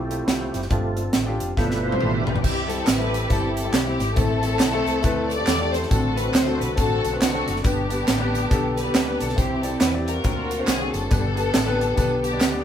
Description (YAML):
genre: uptempo gospel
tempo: 138 BPM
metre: 4/4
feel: swing 61% on 8ths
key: C major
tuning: A4 = 438 Hz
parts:
  - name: percussive tonewheel organ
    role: sustained chords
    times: 0.0-12.6 s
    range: B2 to E5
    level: -32 LUFS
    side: right 3 dB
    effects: slow rotary speaker, overdrive, chorus vibrato
  - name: hollow-body short-scale fingered electric bass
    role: bass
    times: 0.0-12.6 s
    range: F1 to E2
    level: -28 LUFS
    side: equal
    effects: none
  - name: warm concert grand piano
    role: accompaniment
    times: 0.1-12.6 s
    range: G2 to D5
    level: -27 LUFS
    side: left 2 dB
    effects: none
  - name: crisp fusion drum kit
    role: drums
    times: 0.1-12.5 s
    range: crash cymbal, hi-hat, kick drum, snare drum, toms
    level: -23 LUFS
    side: right 1 dB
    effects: none
  - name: warm studio string section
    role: melody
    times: 1.8-12.6 s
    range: B3 to D5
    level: -26 LUFS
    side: left 2 dB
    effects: none
  - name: tambourine and handclaps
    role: percussion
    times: 2.4-12.5 s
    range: none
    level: -35 LUFS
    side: right 2 dB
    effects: none
room: moderate stone room reverb, RT60 1.0 s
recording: band playing live in one room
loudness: -20 LUFS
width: side -9 dB against mid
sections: 0.0-2.4 A section; 2.4-12.6 B section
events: tonewheel organ solo 0.0-2.4; drum fill 1.6-2.4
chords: 0.0 Fmaj9; 0.7 G7sus4; 1.6 G13; 2.4 C; 4.2 Am; 5.9 D7/A; 7.6 G; 9.4 C; 10.2 D7alt; 11.1 G